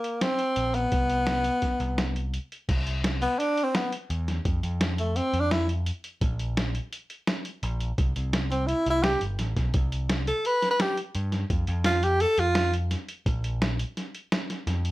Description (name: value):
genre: progressive instrumental, band music in an uneven meter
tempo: 170 BPM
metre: 5/4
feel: straight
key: C major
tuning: A4 = 440 Hz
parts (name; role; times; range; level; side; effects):
- breathy tenor saxophone; melody; 0.0-5.7, 8.5-12.7 s; A3 to B4; -25 LUFS; equal; none
- lo-fi sampler-style drum kit; drums; 0.0-14.9 s; crash cymbal, hi-hat, kick drum, snare drum; -29 LUFS; equal; overdrive
- picked electric bass; bass; 0.6-14.9 s; G1 to G2; -28 LUFS; equal; none
room: light reverb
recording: none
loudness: -24 LUFS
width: side -17 dB against mid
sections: 0.0-2.7 A section; 2.7-14.9 B section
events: break 2.3-2.7; tenor saxophone solo 2.7-14.9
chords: 0.0 Bbsus2; 0.9 N.C.; 2.7 C; 4.5 N.C.; 8.0 C5; 11.5 N.C.; 13.3 Bb5